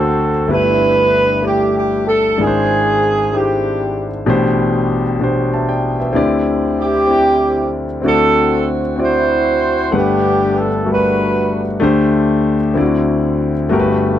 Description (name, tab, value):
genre	gospel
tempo	64 BPM (dotted quarters)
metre	6/8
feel	straight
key	G major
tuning	A4 = 441 Hz
part	mellow horn section	melody	0.0-11.8 s	A#3 to C5	-14 LUFS	right 2 dB	none
part	warm concert grand piano	accompaniment	0.0-14.2 s	G1 to A5	-15 LUFS	left 2 dB	none
room	little or no reverb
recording	dry, close 1970s-style studio recording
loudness	-13 LUFS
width	side -11 dB against mid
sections	0.5-14.2 A section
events	none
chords	0.5 G69; 2.4 E7alt/G#; 4.3 Am11; 6.2 D9sus4; 8.0 D9; 9.9 Gmaj9; 11.8 D7sus4; 12.8 D9